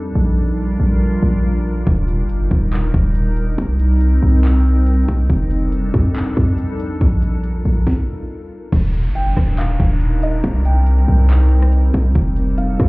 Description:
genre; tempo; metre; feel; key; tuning
hip hop, atmospheric cloud-rap; 140 BPM; 4/4; half-time; Eb lydian; A4 = 440 Hz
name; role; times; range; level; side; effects
glassy FM pad; sustained chords; 0.0-12.9 s; G3 to Bb4; -23 LUFS; equal; ensemble chorus, built-in reverb, sidechain pumping
warm 808-style bass; bass; 0.0-12.9 s; Eb1 to F2; -15 LUFS; equal; none
trap drum kit; drums; 1.9-12.9 s; crash cymbal, handclaps, hi-hat, kick drum, rim click, snare drum; -18 LUFS; equal; none
downlifter; sound effects; 8.7-12.2 s; none; -39 LUFS; equal; none
felt-muted upright piano; melody; 9.2-12.9 s; Eb5 to G5; -28 LUFS; right 1 dB; tape echo
room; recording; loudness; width
little or no reverb; heard muffled through a wall, club reverb, EQ; -14 LUFS; side -24 dB against mid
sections
0.0-8.7 A section; 8.7-12.9 B section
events
stop 7.9-8.7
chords
0.2 Bb6; 1.9 Ebmaj7; 3.6 Cm7; 5.3 F13; 7.0 Bb6; 8.7 Ebmaj7; 10.4 Cm7; 12.2 F9

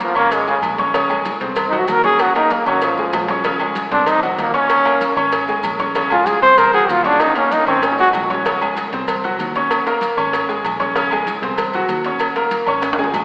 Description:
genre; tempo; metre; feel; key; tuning
latin, salsa; 192 BPM; 4/4; straight; Bb minor; A4 = 441 Hz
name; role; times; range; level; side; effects
brilliant trombone; melody; 0.0-8.1 s; Db3 to C5; -15 LUFS; equal; none
bright upright piano; accompaniment; 0.0-13.2 s; Db3 to Db6; -19 LUFS; equal; none
fingered electric bass; bass; 0.0-13.2 s; Ab1 to Eb2; -33 LUFS; equal; none
congas; percussion; 0.0-13.2 s; none; -36 LUFS; equal; none
cowbell; percussion; 0.0-13.2 s; none; -24 LUFS; equal; none
maracas; percussion; 0.0-13.2 s; none; -36 LUFS; right 1 dB; none
agogo bells and timbales; percussion; 0.2-13.2 s; none; -24 LUFS; right 1 dB; none
room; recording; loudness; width
wet concert hall reverb, RT60 2.5 s; recorded in a church or concert hall, AM radio sound; -14 LUFS; side -28 dB against mid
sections
0.0-8.5 A section; 8.5-13.2 B section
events
trombone solo 0.0-8.5; drum fill 2.7-3.4, 7.2-8.5, 12.8-13.2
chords
0.3 Absus4; 0.9 Bbm7; 1.6 Cdim; 2.2 Eb5; 2.8 Absus4; 3.4 Bbm7; 4.1 Cdim; 4.7 Eb5; 5.3 Absus4; 6.0 Bbm7; 6.6 Cdim; 7.2 Eb5; 7.8 Absus4; 8.5 Bbm7; 9.1 Cdim; 9.7 Eb5; 10.3 Absus4; 11.0 Bbm7; 11.6 Cdim; 12.2 Eb5

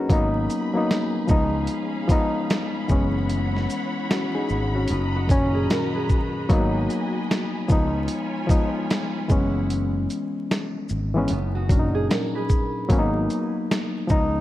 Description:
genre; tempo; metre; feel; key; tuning
lo-fi hip hop; 75 BPM; 4/4; swing 63% on 16ths; G# minor; A4 = 439 Hz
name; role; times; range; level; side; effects
barky reed electric piano; accompaniment; 0.0-14.4 s; F#2 to A#5; -24 LUFS; left 2 dB; overdrive, low-pass filter
clear studio string section; sustained chords; 0.1-9.7 s; E3 to B5; -33 LUFS; equal; low-pass filter
fretless electric bass; bass; 0.1-14.4 s; F#1 to C#2; -26 LUFS; equal; none
dusty soul sampler-style drum kit; drums; 0.1-14.3 s; hi-hat, kick drum, shaker, snare drum; -23 LUFS; equal; none
nylon-string guitar; second line; 4.9-6.5, 11.3-12.9 s; B3 to B4; -32 LUFS; right 3 dB; low-pass filter, diffuse ambient delay
room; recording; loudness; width
moderate plate reverb, RT60 2.7 s; dreamy mix soaked in reverb, vinyl crackle; -21 LUFS; side -14 dB against mid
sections
0.0-14.4 A section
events
none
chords
0.1 G#m7; 1.3 C#7; 2.9 F#7sus4; 4.9 Bmaj7/F#; 6.5 G#m7; 7.7 C#7; 9.3 F#7sus4; 11.3 F#69; 12.9 G#m7

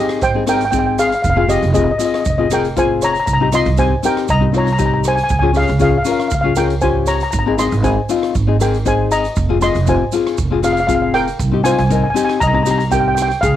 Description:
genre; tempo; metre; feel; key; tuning
calypso; 118 BPM; 4/4; straight; unclear; A4 = 439 Hz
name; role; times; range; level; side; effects
steel pan; melody; 0.0-13.6 s; G4 to C6; -17 LUFS; equal; none
nylon-string guitar; accompaniment; 0.0-13.6 s; C4 to Bb4; -18 LUFS; left 8 dB; cassette tape
swinging big-band drum kit; drums; 0.1-13.6 s; hi-hat, kick drum, rim click; -24 LUFS; right 2 dB; cassette tape
upright bass; bass; 0.2-13.6 s; F1 to Db2; -18 LUFS; right 2 dB; none
tube shaker; percussion; 0.2-13.6 s; none; -31 LUFS; right 13 dB; none
room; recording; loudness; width
moderate booth ambience, RT60 0.2 s; home recording on cassette; -13 LUFS; side -11 dB against mid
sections
0.0-13.6 A section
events
none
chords
0.0 Abmaj7; 1.2 Fm; 3.3 Cm7; 5.3 Db; 7.3 Ab; 9.4 Fm7; 11.4 Cm7

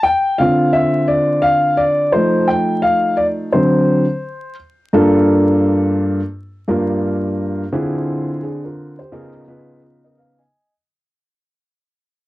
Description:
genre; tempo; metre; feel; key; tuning
hip hop; 86 BPM; 4/4; swing 61% on 16ths; G minor; A4 = 440 Hz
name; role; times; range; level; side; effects
dark baby grand piano; solo; 0.0-10.7 s; G2 to G#5; -14 LUFS; equal; cassette tape
room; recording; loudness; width
moderate booth ambience, RT60 0.2 s; home recording on cassette, vinyl crackle; -14 LUFS; side -17 dB against mid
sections
0.0-4.9 A section; 4.9-10.5 B section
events
grand piano solo 0.0-4.9; fade-out 4.9-10.5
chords
0.0 Dm7; 2.1 F7; 3.5 D7; 4.9 Gm7; 7.7 Dm7b5; 9.1 C#13

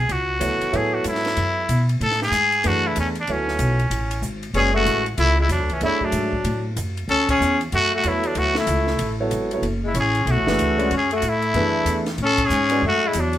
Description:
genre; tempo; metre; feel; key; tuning
modal jazz; 189 BPM; 4/4; swing 63% on 8ths; D lydian; A4 = 440 Hz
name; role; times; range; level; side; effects
trumpet with straight mute; melody; 0.0-13.4 s; C#4 to A4; -21 LUFS; equal; none
upright bass; bass; 0.0-13.4 s; F#1 to B2; -24 LUFS; equal; none
compact cocktail drum kit; drums; 0.1-13.4 s; hi-hat, kick drum, ride cymbal, snare drum; -32 LUFS; equal; none
warm concert grand piano; accompaniment; 0.4-12.8 s; C#3 to E5; -25 LUFS; right 1 dB; none
clear tenor saxophone; second line; 4.6-13.4 s; E3 to C#4; -24 LUFS; left 2 dB; none
room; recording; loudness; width
moderate studio reverb, RT60 0.7 s; band playing live in one room; -18 LUFS; side -12 dB against mid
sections
0.0-13.4 A section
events
band accent 7.2, 12.3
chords
0.0 Dmaj9

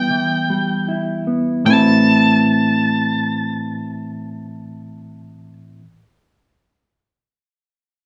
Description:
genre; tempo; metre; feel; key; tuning
rock; 77 BPM; 4/4; straight; A minor; A4 = 439 Hz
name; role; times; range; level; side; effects
octave-fuzz lead guitar; melody; 0.0-5.5 s; G5 to A5; -22 LUFS; equal; distortion
mellow electric guitar; arpeggios; 0.0-5.8 s; A2 to B4; -19 LUFS; equal; vibrato effect
room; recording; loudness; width
wet small room reverb, RT60 0.5 s; band playing live in one room; -17 LUFS; mono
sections
0.0-1.7 A section; 1.7-4.8 B section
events
none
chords
0.0 Em; 1.7 Amadd9

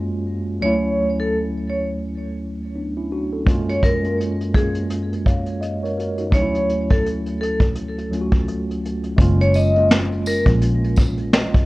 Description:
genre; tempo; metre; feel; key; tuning
lo-fi hip hop; 84 BPM; 4/4; swing 60% on 16ths; unclear; A4 = 442 Hz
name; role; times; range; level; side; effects
mellow tine electric piano; accompaniment; 0.0-11.7 s; D2 to E#5; -23 LUFS; equal; medium stereo tremolo, low-pass filter
vibraphone with hard mallets; melody; 0.6-10.5 s; G#4 to D#5; -22 LUFS; equal; low-pass filter, tape echo
vintage brush drum kit; drums; 3.5-11.7 s; hi-hat, kick drum, snare drum; -17 LUFS; equal; vintage 12-bit sampler grit
vintage muted fingered electric bass; bass; 9.2-11.5 s; F#1 to A#1; -19 LUFS; equal; none
tambourine; percussion; 9.5-11.2 s; none; -35 LUFS; right 1 dB; none
room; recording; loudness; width
moderate studio reverb, RT60 0.6 s; worn, warbling old tape, cassette tape, warbly pitch drift; -18 LUFS; side -20 dB against mid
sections
0.0-9.2 A section; 9.2-11.7 B section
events
none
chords
0.0 F#maj9; 0.6 Dmaj9; 3.5 F#maj9; 6.3 Dmaj9; 9.2 F#maj9

